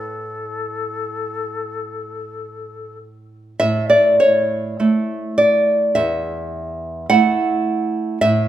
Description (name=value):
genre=romantic duo for flute and classical guitar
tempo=46-54 BPM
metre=4/4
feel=rubato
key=A major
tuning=A4 = 437 Hz
part: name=concert flute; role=melody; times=0.0-3.0 s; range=A4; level=-27 LUFS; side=left 4 dB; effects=none
part: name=nylon-string guitar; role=accompaniment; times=0.0-8.5 s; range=E2 to F#5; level=-15 LUFS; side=right 1 dB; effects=none
room=moderate recital hall reverb, RT60 1.6 s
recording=minimal, uncompressed stereo recording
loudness=-16 LUFS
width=side -11 dB against mid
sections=0.0-3.6 A section; 3.6-8.5 A section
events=none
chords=0.0 A